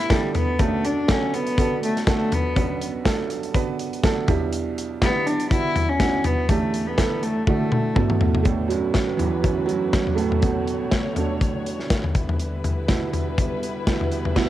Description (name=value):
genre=piano-driven pop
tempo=122 BPM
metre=4/4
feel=swing 56% on 16ths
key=B minor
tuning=A4 = 442 Hz
part: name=warm cello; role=melody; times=0.0-8.2 s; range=G3 to E4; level=-24 LUFS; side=left 2 dB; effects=none
part: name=clear upright piano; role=accompaniment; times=0.0-14.5 s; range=A1 to B4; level=-25 LUFS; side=right 6 dB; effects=cassette tape
part: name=modern studio drum kit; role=drums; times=0.0-14.5 s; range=crash cymbal, hi-hat, kick drum, snare drum, toms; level=-22 LUFS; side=left 1 dB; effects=none
part: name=dark studio string section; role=sustained chords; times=8.4-14.5 s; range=D3 to C#5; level=-30 LUFS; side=left 2 dB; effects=cassette tape
room=light reverb, small room reverb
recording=home recording on cassette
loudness=-20 LUFS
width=side -13 dB against mid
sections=0.0-8.5 A section; 8.5-14.5 B section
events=drum fill 7.5-8.5; upright piano solo 8.5-14.5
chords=0.0 G6/B; 0.6 Bm7; 4.3 G6/B; 6.5 A7sus4; 8.5 Bm7; 12.1 G6